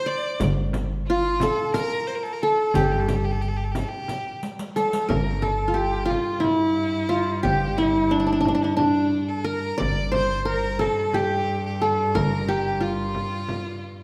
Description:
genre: Turkish makam ensemble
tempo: 179 BPM (eighths)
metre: 7/8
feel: straight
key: G makam huseyni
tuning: A4 = 440 Hz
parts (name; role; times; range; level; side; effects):
- qanun; melody; 0.0-14.0 s; D4 to D5; -25 LUFS; equal; none
- clear violin; second line; 0.0-14.0 s; D4 to D5; -32 LUFS; equal; none
- upright bass; bass; 0.4-13.2 s; G1; -31 LUFS; equal; none
- darbuka; percussion; 0.4-14.0 s; none; -34 LUFS; equal; none
- frame drum; percussion; 0.4-13.6 s; none; -34 LUFS; equal; none
- riq; percussion; 0.4-5.1 s; none; -38 LUFS; equal; none
- rich cello; drone; 5.1-14.0 s; G2; -33 LUFS; equal; none
room: wet recital hall reverb, RT60 1.3 s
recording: none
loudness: -23 LUFS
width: mono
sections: 0.0-5.1 A section; 5.1-14.0 B section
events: drum fill 4.4-5.1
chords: none

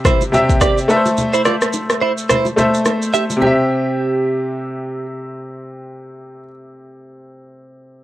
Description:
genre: afrobeats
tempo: 107 BPM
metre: 4/4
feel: swing 58% on 16ths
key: C major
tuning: A4 = 440 Hz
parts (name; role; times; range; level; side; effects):
- clear grand piano; accompaniment; 0.0-8.0 s; C3 to E5; -18 LUFS; left 1 dB; none
- deep house drum kit; drums; 0.0-3.4 s; kick drum, rim click, shaker; -18 LUFS; equal; none
- direct-recorded clean electric guitar; riff; 0.1-5.1 s; E4 to E5; -19 LUFS; right 3 dB; wide subtle chorus, tape echo
- congas and bongos; percussion; 0.1-3.7 s; none; -25 LUFS; equal; none
room: little or no reverb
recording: dry, gritty hardware recording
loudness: -14 LUFS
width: side -15 dB against mid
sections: 0.0-3.4 A section; 3.4-5.7 B section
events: kick muted 2.3-3.4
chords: 0.0 C; 0.9 Am; 3.4 C

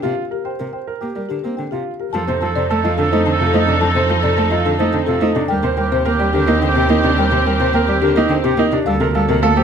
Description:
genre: classical, minimalist pattern music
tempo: 107 BPM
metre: 3/4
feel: straight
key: unclear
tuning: A4 = 440 Hz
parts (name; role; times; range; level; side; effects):
- folk marimba with soft mallets; melody; 0.0-9.6 s; G4 to A5; -22 LUFS; left 11 dB; none
- rich cello; accompaniment; 0.0-9.6 s; C3 to Bb3; -21 LUFS; equal; none
- clear grand piano; arpeggios; 0.0-9.6 s; C4 to C5; -21 LUFS; right 7 dB; none
- warm oboe; second line; 2.1-9.6 s; G4 to A4; -23 LUFS; right 4 dB; none
- rich symphonic string section; sustained chords; 2.1-9.6 s; Bb3 to A4; -23 LUFS; left 3 dB; none
- clear double bass; bass; 2.1-9.6 s; D2 to F2; -21 LUFS; right 2 dB; none
room: moderate recital hall reverb, RT60 1.5 s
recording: close, detailed microphones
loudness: -14 LUFS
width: side -7 dB against mid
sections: 0.0-2.1 A section; 2.1-9.6 B section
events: none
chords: 0.0 Gm7; 2.1 F7; 5.5 Eb6; 8.9 Bbmaj9/D

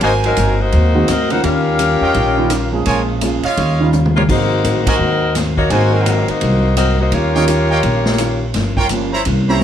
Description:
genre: jazz, big band swing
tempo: 169 BPM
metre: 4/4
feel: swing 63% on 8ths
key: unclear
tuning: A4 = 441 Hz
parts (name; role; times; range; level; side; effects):
- warm saxophone section; melody; 0.0-8.6 s; Gb3 to Gb5; -17 LUFS; left 3 dB; none
- hollow-body jazz guitar; accompaniment; 0.0-9.6 s; G2 to F4; -24 LUFS; left 4 dB; none
- clear trumpet section; stabs; 0.0-9.6 s; Fb4 to Bb5; -20 LUFS; right 3 dB; none
- upright bass; bass; 0.0-9.6 s; G1 to Fb2; -17 LUFS; equal; none
- swinging big-band drum kit; drums; 0.0-9.6 s; crash cymbal, hi-hat, kick drum, ride cymbal, rim click, snare drum, toms; -22 LUFS; right 1 dB; none
- warm concert grand piano; accompaniment; 0.9-9.6 s; Eb3 to Ab4; -20 LUFS; right 4 dB; none
room: light reverb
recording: none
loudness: -13 LUFS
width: side -9 dB against mid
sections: 0.0-9.6 A section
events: drum fill 3.9-4.3; band accent 4.8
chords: 0.0 Ab9; 1.4 Eb9; 2.9 Bbm7; 3.6 Eb9; 4.3 Ab9; 7.1 Eb9; 8.6 Gm7b5

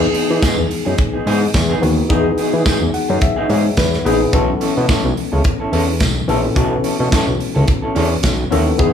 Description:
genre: disco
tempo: 108 BPM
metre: 4/4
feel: swing 56% on 16ths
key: unclear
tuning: A4 = 442 Hz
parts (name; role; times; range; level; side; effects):
- mellow electric guitar; accompaniment; 0.0-8.9 s; B3 to A4; -22 LUFS; right 4 dB; none
- tine electric piano; accompaniment; 0.0-8.9 s; E3 to F#5; -19 LUFS; left 6 dB; medium stereo tremolo
- fat analog bass; bass; 0.0-8.9 s; A#1 to E3; -17 LUFS; equal; none
- modern studio drum kit; drums; 0.1-8.9 s; hi-hat, kick drum, snare drum; -19 LUFS; right 1 dB; none
- tambourine; percussion; 0.4-8.4 s; none; -28 LUFS; right 2 dB; none
room: light reverb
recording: studio reverb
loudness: -14 LUFS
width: side -8 dB against mid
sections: 0.0-8.9 A section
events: tine electric piano fill 2.7-4.3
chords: 0.0 Emaj7; 4.3 B9sus4

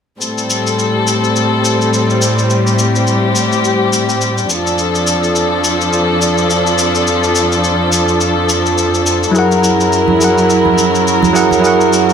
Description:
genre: sunset chillout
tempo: 105 BPM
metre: 4/4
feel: swing 58% on 16ths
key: unclear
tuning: A4 = 438 Hz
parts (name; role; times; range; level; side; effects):
- dark chamber string section; sustained chords; 0.2-12.1 s; F2 to A#4; -12 LUFS; left 1 dB; none
- shaker; drums; 0.2-12.1 s; none; -19 LUFS; left 2 dB; none
- bell-like tine electric piano; accompaniment; 9.3-12.1 s; F#3 to F#5; -12 LUFS; moving between left 3 dB and right 6 dB; auto-pan, digital delay
- congas; percussion; 10.1-11.6 s; none; -19 LUFS; right 4 dB; none
room: moderate plate reverb, RT60 2.3 s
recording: none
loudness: -11 LUFS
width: side -7 dB against mid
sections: 0.2-12.1 A section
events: none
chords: 0.2 Am7; 4.5 F6; 9.3 F#7

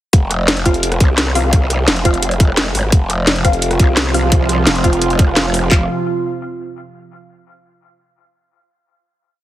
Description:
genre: dark technical drum and bass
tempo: 172 BPM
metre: 4/4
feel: straight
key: unclear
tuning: A4 = 438 Hz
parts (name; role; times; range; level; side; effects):
- growl bass; bass; 0.1-5.9 s; F1 to C2; -17 LUFS; equal; chorus, tube saturation
- drum and bass drum kit; drums; 0.1-5.8 s; handclaps, kick drum; -12 LUFS; equal; none
- drum and bass drum kit; drums; 0.1-5.7 s; hi-hat, rim click, snare drum; -17 LUFS; equal; none
- filtered dub chord stab; stabs; 0.7-5.8 s; C4 to F5; -22 LUFS; left 1 dB; phaser, dub echo
- sweeping resonant pad; sustained chords; 2.9-5.9 s; C3 to F4; -20 LUFS; right 3 dB; chorus, sidechain pumping
room: light reverb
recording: heavily compressed radio sound, multiband compression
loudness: -12 LUFS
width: side -14 dB against mid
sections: 0.1-5.7 drop; 5.7-7.1 final chord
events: drop 0.1-5.7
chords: 0.1 F5

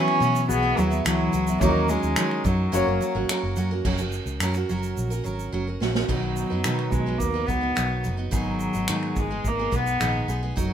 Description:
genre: acoustic pop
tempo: 107 BPM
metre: 4/4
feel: straight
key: B major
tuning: A4 = 440 Hz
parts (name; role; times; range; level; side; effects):
- rich cello; melody; 0.0-10.7 s; F#3 to C#4; -26 LUFS; left 1 dB; none
- clear grand piano; accompaniment; 0.0-3.9 s; A#3 to E5; -29 LUFS; left 4 dB; none
- picked steel-string acoustic guitar; accompaniment; 0.0-10.7 s; G#2 to B4; -28 LUFS; right 3 dB; none
- vintage muted fingered electric bass; bass; 0.0-10.7 s; F#1 to E3; -28 LUFS; equal; none
- unplugged drum kit; drums; 0.1-10.7 s; crash cymbal, finger snaps, kick drum, shaker, snare drum; -29 LUFS; equal; none
room: light reverb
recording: minimal, uncompressed stereo recording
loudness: -22 LUFS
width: side -9 dB against mid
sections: 0.0-3.8 A section; 3.8-6.1 B section; 6.1-10.7 C section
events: drum fill 5.5-6.1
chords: 0.0 Esus2; 1.6 D#m7; 2.7 F#; 6.1 B; 8.3 G#m

